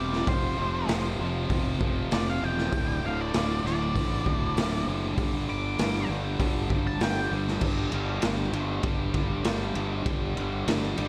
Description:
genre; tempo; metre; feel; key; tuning
quiet-loud alternative rock; 98 BPM; 4/4; straight; unclear; A4 = 440 Hz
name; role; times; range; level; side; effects
octave-fuzz lead guitar; melody; 0.0-7.3 s; C5 to D6; -36 LUFS; equal; distortion
crunchy overdriven guitar; riff; 0.0-11.1 s; D2 to C4; -35 LUFS; equal; slapback echo
high-gain distorted guitar; riff; 0.0-11.1 s; D2 to C4; -39 LUFS; equal; distortion, slapback echo
fuzz fingered electric bass; bass; 0.0-11.1 s; D1 to A1; -34 LUFS; equal; overdrive
raw garage drum kit; drums; 0.1-11.1 s; crash cymbal, hi-hat, kick drum, ride cymbal, snare drum; -32 LUFS; equal; vintage 12-bit sampler grit
room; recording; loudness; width
moderate concert hall reverb, RT60 2.1 s; big arena sound; -28 LUFS; mono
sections
0.0-7.6 A section; 7.6-11.1 B section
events
lead electric guitar solo 0.0-7.6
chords
0.3 F5; 2.7 D5; 5.2 G5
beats
| 0.28 0.89 1.50 2.12 | 2.73 3.34 3.96 4.57 | 5.18 5.79 6.40 7.01 | 7.62 8.23 8.84 9.45 | 10.06 10.67

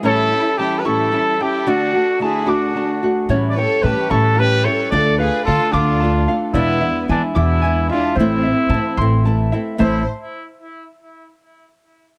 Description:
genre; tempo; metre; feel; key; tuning
mexican folk, mariachi; 74 BPM (dotted quarters); 6/8; straight; unclear; A4 = 440 Hz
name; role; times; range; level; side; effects
nylon-string guitar; accompaniment; 0.0-10.0 s; E2 to F#4; -23 LUFS; equal; none
concert harp; arpeggios; 0.0-10.1 s; B4 to D6; -28 LUFS; equal; none
warm trumpet; melody; 0.1-10.0 s; D4 to D5; -22 LUFS; equal; tape echo
rich studio violin section; second line; 0.1-10.0 s; B3 to C5; -27 LUFS; equal; none
upright bass; bass; 3.3-10.1 s; A1 to E3; -22 LUFS; equal; none
room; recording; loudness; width
moderate small room reverb, RT60 0.6 s; none; -17 LUFS; mono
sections
0.0-9.8 A section; 9.8-11.4 B section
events
none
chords
0.0 A7; 1.7 D; 3.3 A7; 4.9 Dm; 6.5 E7; 8.2 Am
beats
| 0.04 0.85 | 1.66 2.47 | 3.29 4.11 | 4.92 5.73 | 6.54 7.35 | 8.16 8.98 | 9.79

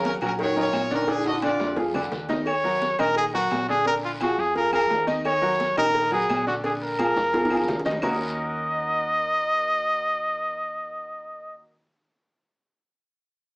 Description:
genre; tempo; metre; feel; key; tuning
latin, salsa; 173 BPM; 4/4; straight; Eb minor; A4 = 440 Hz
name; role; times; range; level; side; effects
bright horn section; melody; 0.0-1.8 s; Db4 to Eb5; -26 LUFS; equal; none
mellow trombone section; second line; 0.0-2.2 s; Db3 to Eb3; -30 LUFS; equal; none
bright grand piano; accompaniment; 0.0-11.6 s; D3 to Eb5; -27 LUFS; equal; none
hollow-body short-scale fingered electric bass; bass; 0.0-11.6 s; Bb1 to F2; -40 LUFS; equal; none
cowbell and bongos; percussion; 0.0-8.1 s; none; -34 LUFS; equal; none
guiro; percussion; 0.0-8.1 s; none; -42 LUFS; equal; none
congas; percussion; 0.1-8.1 s; none; -34 LUFS; equal; none
timbales and agogo bells; percussion; 0.1-8.1 s; none; -32 LUFS; equal; none
claves; percussion; 0.2-8.1 s; none; -42 LUFS; equal; none
clear trumpet; melody; 2.5-11.6 s; F4 to Eb5; -23 LUFS; equal; none
room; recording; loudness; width
wet studio ambience, RT60 0.5 s; heard from further back in the room, small speaker sound; -21 LUFS; side -38 dB against mid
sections
0.0-2.5 A section; 2.5-8.0 B section; 8.0-10.8 C section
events
drum fill 1.1-2.5, 7.2-8.0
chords
0.0 Ebm7; 1.1 Bb; 2.5 Ebm7; 3.9 Bb7; 5.2 Ebm7; 6.6 Bb7; 8.0 Ebm7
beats
0.04 0.39 0.74 | 1.08 1.43 1.78 2.12 | 2.47 2.82 3.17 3.51 | 3.86 4.21 4.55 4.90 | 5.25 5.60 5.94 6.29 | 6.64 6.98 7.33 7.68 | 8.03 8.37 8.72 9.07 | 9.41 9.76 10.11 10.45

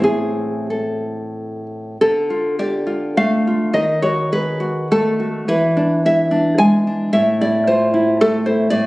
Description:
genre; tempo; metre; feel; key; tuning
romantic piece for solo classical guitar; 86-116 BPM; 3/4; rubato; A minor; A4 = 440 Hz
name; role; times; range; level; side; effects
nylon-string guitar; solo; 0.0-8.9 s; A2 to G#5; -15 LUFS; equal; none
room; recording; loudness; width
moderate recital hall reverb, RT60 1.4 s; recorded on a phone in the room, studio reverb, compression; -15 LUFS; side -20 dB against mid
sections
0.0-2.0 A section; 2.0-8.9 B section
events
none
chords
0.0 Am; 2.0 Dm; 3.7 B7/D#; 5.5 E7; 7.1 Am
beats
| 0.01 0.67 1.34 | 2.01 2.60 3.17 | 3.74 4.31 4.88 | 5.46 6.03 6.58 | 7.13 7.66 8.19 | 8.71

